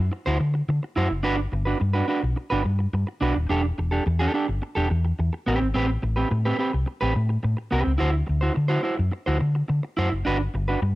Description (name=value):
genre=disco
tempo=107 BPM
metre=4/4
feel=straight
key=unclear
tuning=A4 = 439 Hz
part: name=electric guitar at the edge of break-up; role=accompaniment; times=0.0-10.9 s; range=C4 to C5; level=-26 LUFS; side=right 2 dB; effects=none
part: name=hollow-body short-scale fingered electric bass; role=bass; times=0.0-11.0 s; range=D#1 to D3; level=-23 LUFS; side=left 1 dB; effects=none
room=light reverb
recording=none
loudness=-22 LUFS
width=side -17 dB against mid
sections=0.0-11.0 A section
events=none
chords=0.0 D9; 1.2 Gmaj7; 3.5 Em7; 5.5 Am9; 8.0 D9; 10.3 Gmaj7